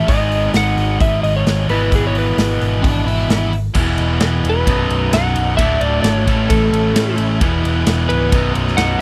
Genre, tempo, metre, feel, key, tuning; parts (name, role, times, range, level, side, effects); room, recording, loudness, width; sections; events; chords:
classic rock; 131 BPM; 4/4; straight; A4 = 438 Hz
electric slide guitar; melody; 0.0-9.0 s; G#4 to F#5; -22 LUFS; equal; tape echo
overdriven electric guitar; riff; 0.0-9.0 s; B1 to A3; -23 LUFS; equal
tight distorted guitar; riff; 0.0-9.0 s; B1 to A4; -25 LUFS; equal; distortion
picked electric bass; bass; 0.1-9.0 s; B0 to A1; -21 LUFS; equal
big rock drum kit; drums; 0.1-8.9 s; crash cymbal, hi-hat, kick drum, ride cymbal, snare drum; -22 LUFS; equal
octave-fuzz lead guitar; second line; 2.8-3.5 s; D4 to E4; -26 LUFS; equal; distortion
tonewheel organ; sustained chords; 3.8-9.0 s; F#3 to E5; -34 LUFS; equal
little or no reverb; dry, close 1970s-style studio recording; -16 LUFS; mono
0.0-3.7 A section; 3.7-9.0 B section
0.1 G#m; 1.7 E/G#; 3.7 E; 4.7 B; 5.6 D; 6.3 A; 7.4 E; 8.3 B